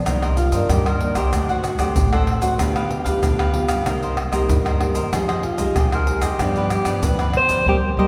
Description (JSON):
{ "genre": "samba and choro", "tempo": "95 BPM", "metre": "4/4", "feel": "straight", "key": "C minor", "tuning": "A4 = 440 Hz", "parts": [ { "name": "nylon-string guitar", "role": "accompaniment", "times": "0.0-8.1 s", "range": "G2 to G4", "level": "-26 LUFS", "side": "equal", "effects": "none" }, { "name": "upright bass", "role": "bass", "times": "0.0-8.1 s", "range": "A1 to G2", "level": "-27 LUFS", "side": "equal", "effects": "none" }, { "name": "cavaquinho", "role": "accompaniment", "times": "0.1-8.1 s", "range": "D4 to F#5", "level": "-30 LUFS", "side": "equal", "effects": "none" }, { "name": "tube shaker, surdo, pandeiro and tamborim", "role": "percussion", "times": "0.1-8.1 s", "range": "none", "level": "-24 LUFS", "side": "equal", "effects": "none" }, { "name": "mellow alto saxophone", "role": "melody", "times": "0.4-8.1 s", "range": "F4 to C5", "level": "-26 LUFS", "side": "equal", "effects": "none" } ], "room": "wet concert hall reverb, RT60 2.2 s", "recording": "recorded in a church or concert hall", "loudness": "-20 LUFS", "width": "mono", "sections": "0.0-8.1 A section", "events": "band accent 7.7-8.1", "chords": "0.1 Cm9; 1.3 D7; 2.6 G7/D; 3.9 Cm7; 5.1 Fm9; 6.4 G7" }